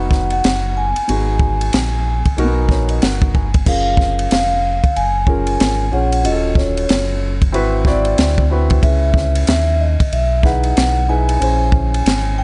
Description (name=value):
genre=hip hop, jazz-hop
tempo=93 BPM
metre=4/4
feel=swing 61% on 16ths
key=unclear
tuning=A4 = 440 Hz
part: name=vibraphone with soft mallets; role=melody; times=0.0-12.4 s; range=C#5 to G#5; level=-23 LUFS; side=equal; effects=none
part: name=dark concert grand piano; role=accompaniment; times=0.0-12.4 s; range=A#3 to G#5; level=-24 LUFS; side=equal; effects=none
part: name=sub bass with octave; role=bass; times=0.0-12.4 s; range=D#1 to D#2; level=-20 LUFS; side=equal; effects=none
part: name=compact cocktail drum kit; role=drums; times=0.1-12.2 s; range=crash cymbal, hi-hat, kick drum, ride cymbal, snare drum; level=-20 LUFS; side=equal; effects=none
room=studio reverb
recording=nothing above 10.4 kHz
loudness=-16 LUFS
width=mono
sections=0.0-3.7 A section; 3.7-12.4 B section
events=grand piano fill 2.4-3.7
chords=0.0 G#m9; 3.7 F#maj9; 6.2 D#m7b5; 7.5 G#7alt; 8.8 C#m9; 11.4 A#m7b5